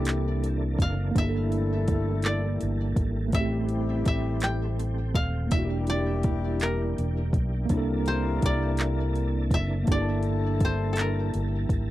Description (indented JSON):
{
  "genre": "slow six-eight R&B",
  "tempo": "55 BPM (dotted quarters)",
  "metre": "6/8",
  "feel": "straight",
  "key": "G dorian",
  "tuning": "A4 = 441 Hz",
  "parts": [
    { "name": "koto", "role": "melody", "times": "0.0-11.9 s", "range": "A4 to G5", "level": "-33 LUFS", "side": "left 1 dB", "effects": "none" },
    { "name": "tine electric piano", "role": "accompaniment", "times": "0.0-11.9 s", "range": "E3 to A5", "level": "-32 LUFS", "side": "right 2 dB", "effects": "overdrive, fast stereo tremolo" },
    { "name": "tonewheel organ", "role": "sustained chords", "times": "0.0-11.9 s", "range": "C3 to A5", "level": "-37 LUFS", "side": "right 2 dB", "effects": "chorus vibrato, fast rotary speaker" },
    { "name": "dark horn section", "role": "stabs", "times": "0.0-11.7 s", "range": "G3 to A5", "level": "-34 LUFS", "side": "left 6 dB", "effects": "none" },
    { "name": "fingered electric bass", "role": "bass", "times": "0.0-11.9 s", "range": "Eb1 to C2", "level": "-27 LUFS", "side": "equal", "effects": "none" },
    { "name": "smooth R&B drum kit", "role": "drums", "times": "0.1-11.9 s", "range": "handclaps, hi-hat, kick drum", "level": "-26 LUFS", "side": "equal", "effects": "overdrive" }
  ],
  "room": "little or no reverb",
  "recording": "dry, close 1970s-style studio recording",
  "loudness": "-24 LUFS",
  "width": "side -15 dB against mid",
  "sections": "0.0-11.9 A section",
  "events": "none",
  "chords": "0.0 C13; 1.2 Gm69; 3.3 Am7; 5.5 Em7b5; 7.7 C13; 9.9 Gm69"
}